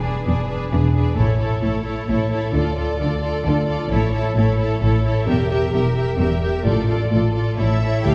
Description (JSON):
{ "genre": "cinematic", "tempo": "131 BPM", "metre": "3/4", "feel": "straight", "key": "D harmonic minor", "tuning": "A4 = 440 Hz", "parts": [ { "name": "warm symphonic violin section", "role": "melody", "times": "0.0-8.1 s", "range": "B4 to F5", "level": "-31 LUFS", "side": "equal", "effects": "none" }, { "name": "warm symphonic violin section", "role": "second line", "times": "0.0-8.1 s", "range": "G#4 to G5", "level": "-30 LUFS", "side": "equal", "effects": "none" }, { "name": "rich symphonic viola section", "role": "accompaniment", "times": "0.0-8.1 s", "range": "D4 to G4", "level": "-28 LUFS", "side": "equal", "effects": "none" }, { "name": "rich symphonic cello section", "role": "bass", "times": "0.0-8.0 s", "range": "E2 to D3", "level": "-25 LUFS", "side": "equal", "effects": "none" }, { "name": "warm symphonic double bass section", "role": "bass", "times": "0.0-8.1 s", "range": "E1 to D2", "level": "-24 LUFS", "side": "equal", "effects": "none" }, { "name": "timpani", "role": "percussion", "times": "6.7-8.1 s", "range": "A2 to D3", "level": "-27 LUFS", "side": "equal", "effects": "none" } ], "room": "wet scoring stage reverb, RT60 1.8 s", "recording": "heard from further back in the room", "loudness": "-20 LUFS", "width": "mono", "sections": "0.0-8.1 A section", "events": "build-up 0.0-8.1", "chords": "0.0 E7; 1.2 A; 2.5 Dm; 3.9 A; 5.3 Edim; 6.7 Dm/A; 7.6 A" }